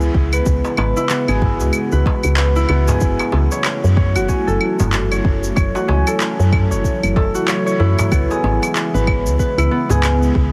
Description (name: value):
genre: organic downtempo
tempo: 94 BPM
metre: 4/4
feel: swing 59% on 16ths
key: C# minor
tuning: A4 = 444 Hz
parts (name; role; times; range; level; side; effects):
- warbly tape-like pad; sustained chords; 0.0-10.5 s; C#3 to F#4; -26 LUFS; equal; chorus, built-in reverb, phaser, sidechain pumping
- concert harp; arpeggios; 0.0-10.5 s; B3 to C#5; -23 LUFS; equal; vintage 12-bit sampler grit, delay
- woody FM bass; bass; 0.0-10.5 s; F#1 to F#2; -19 LUFS; equal; sidechain pumping
- electronic shaker, claves and handclaps; drums; 0.0-10.3 s; none; -26 LUFS; equal; none
- electronic kick drum; drums; 0.1-10.5 s; none; -21 LUFS; equal; none
- darbuka; percussion; 0.6-10.0 s; none; -27 LUFS; equal; none
room: light reverb, digital ambience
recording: heavily compressed radio sound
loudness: -17 LUFS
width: mono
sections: 0.0-10.5 A section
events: none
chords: 0.0 C#m7; 3.0 F#m7; 8.1 C#m7